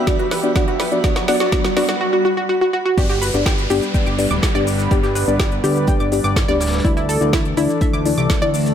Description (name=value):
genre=progressive house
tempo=124 BPM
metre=4/4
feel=straight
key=G major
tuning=A4 = 440 Hz
part: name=warm analog pad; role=sustained chords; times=0.0-8.7 s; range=E3 to F#5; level=-24 LUFS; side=left 1 dB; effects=chorus, sidechain pumping
part: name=deep mellow chord stab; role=stabs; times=0.0-8.5 s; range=A3 to D5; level=-22 LUFS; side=left 3 dB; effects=chorus, sidechain pumping, ping-pong delay
part: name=riser and downlifter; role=sound effects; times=0.0-6.8 s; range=none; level=-28 LUFS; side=left 1 dB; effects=none
part: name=twinkling granular texture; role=texture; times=0.0-2.0 s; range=B5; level=-36 LUFS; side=right 4 dB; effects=none
part: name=analog pluck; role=arpeggios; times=0.1-8.5 s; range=E4 to D6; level=-22 LUFS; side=right 1 dB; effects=chorus, sidechain pumping, ping-pong delay
part: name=deep house drum kit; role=drums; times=0.1-8.7 s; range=crash cymbal, hi-hat, shaker, snare drum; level=-26 LUFS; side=equal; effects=studio reverb
part: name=electronic kick drum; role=drums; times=0.1-8.4 s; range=none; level=-19 LUFS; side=equal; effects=studio reverb
part: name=fat analog bass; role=bass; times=3.0-8.7 s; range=D1 to D2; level=-22 LUFS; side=equal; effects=sidechain pumping
part: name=vintage brush drum kit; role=drums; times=3.0-8.7 s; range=hi-hat, snare drum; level=-34 LUFS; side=equal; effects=none
room=light reverb, digital ambience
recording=none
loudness=-15 LUFS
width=side -9 dB against mid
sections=0.0-3.0 A section; 3.0-8.7 B section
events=build-up 0.0-3.0; drum fill 0.0-2.0; riser 0.0-2.0; filter sweep on synth stab 0.0-3.0; drop 3.0-8.7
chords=0.0 Emadd9; 3.0 G; 6.8 Dsus2